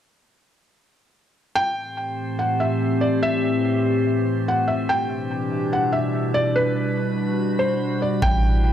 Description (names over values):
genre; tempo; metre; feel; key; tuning
hip hop, atmospheric cloud-rap; 144 BPM; 4/4; half-time; A dorian; A4 = 441 Hz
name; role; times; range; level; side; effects
felt-muted upright piano; melody; 1.6-8.7 s; B4 to G5; -24 LUFS; equal; low-pass filter, tape echo
warbly tape-like pad; sustained chords; 2.0-8.7 s; A2 to G4; -22 LUFS; left 1 dB; chorus, built-in reverb, sidechain pumping
drifting glass-harmonics texture; texture; 2.0-8.7 s; G3 to B5; -31 LUFS; right 2 dB; chorus, built-in reverb
soft 808-style bass; bass; 8.2-8.7 s; A1; -18 LUFS; equal; none
electronic kick drum; drums; 8.2-8.3 s; none; -21 LUFS; equal; none
room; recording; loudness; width
moderate digital room reverb, RT60 1.1 s; none; -20 LUFS; side -10 dB against mid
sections
1.6-8.2 A section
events
hi-hats muted 8.2-8.7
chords
1.6 Am7; 4.9 Em7; 6.6 Gmaj7; 8.2 Am7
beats
| 1.56 1.97 2.39 2.81 | 3.22 3.64 4.06 4.47 | 4.89 5.31 5.72 6.14 | 6.56 6.97 7.39 7.81 | 8.22 8.64